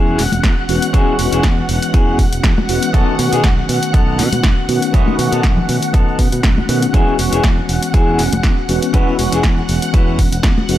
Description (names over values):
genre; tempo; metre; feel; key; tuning
filtered disco house; 120 BPM; 4/4; swing 54% on 16ths; E major; A4 = 440 Hz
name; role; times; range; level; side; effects
bright tine electric piano; accompaniment; 0.0-10.8 s; D#3 to F#4; -20 LUFS; equal; medium stereo tremolo, phaser, vintage 12-bit sampler grit, sidechain pumping, low-pass filter
string machine, full ensemble; sustained chords; 0.0-10.8 s; F#5 to F#6; -24 LUFS; equal; phaser, ensemble chorus, sidechain pumping, low-pass filter
mellow electric guitar; riff; 0.0-10.6 s; B3 to B4; -22 LUFS; left 2 dB; sidechain pumping, low-pass filter
modern bright fingered electric bass; bass; 0.0-10.8 s; E1 to B2; -19 LUFS; equal; tube saturation, sidechain pumping, low-pass filter
tube shaker and congas; percussion; 0.1-10.8 s; none; -23 LUFS; left 2 dB; sidechain pumping on perc, low-pass filter on perc
punchy analog drum machine; drums; 0.2-10.8 s; hi-hat, snare drum; -22 LUFS; equal; overdrive, sidechain pumping on hats, sidechain pumping on cymbals
electronic kick drum; drums; 0.4-10.5 s; none; -14 LUFS; equal; none
room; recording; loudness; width
digital ambience; none; -12 LUFS; side -13 dB against mid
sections
0.0-10.8 A section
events
none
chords
0.0 E6; 2.9 B7; 6.9 E6